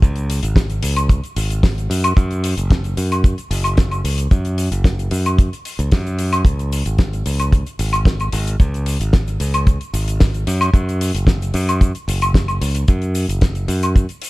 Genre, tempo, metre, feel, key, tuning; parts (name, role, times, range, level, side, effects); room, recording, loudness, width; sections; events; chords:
nu-disco, nu disco; 112 BPM; 4/4; straight; A4 = 441 Hz
modern bright fingered electric bass; bass; 0.0-14.1 s; F#1 to F#2; -19 LUFS; equal; tube saturation
damped 70s drum kit; drums; 0.0-14.3 s; hi-hat, shaker, snare drum, woodblock; -23 LUFS; left 1 dB; studio reverb
kick drum; drums; 0.0-14.1 s; -13 LUFS; equal; studio reverb
little or no reverb; dark, warm production; -15 LUFS; side -20 dB against mid
0.0-14.3 A section